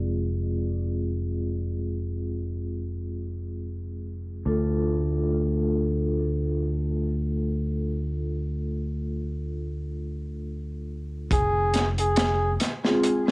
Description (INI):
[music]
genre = trip hop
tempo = free time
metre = none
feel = none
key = unclear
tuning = A4 = 440 Hz
[part]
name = vibraphone with medium hard mallets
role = accompaniment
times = 0.0-13.3 s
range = Ab3 to A4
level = -30 LUFS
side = equal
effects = tremolo, tape echo
[part]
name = modern bright fingered electric bass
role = bass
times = 0.0-12.6 s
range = F1 to D2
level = -27 LUFS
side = equal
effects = transformer saturation
[part]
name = trumpet with bucket mute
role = melody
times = 11.3-12.6 s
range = Ab4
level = -26 LUFS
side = equal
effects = cassette tape, tape echo
[part]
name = crunchy breakbeat drum kit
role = drums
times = 11.3-13.3 s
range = hi-hat, kick drum, snare drum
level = -25 LUFS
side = equal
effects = cassette tape
[sound]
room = small room reverb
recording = home recording on cassette, low-pass filter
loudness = -25 LUFS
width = side -25 dB against mid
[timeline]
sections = 0.0-11.3 A section; 11.3-13.3 B section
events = filter sweep 0.0-11.3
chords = 0.0 Fm; 4.5 Dm; 11.3 Fm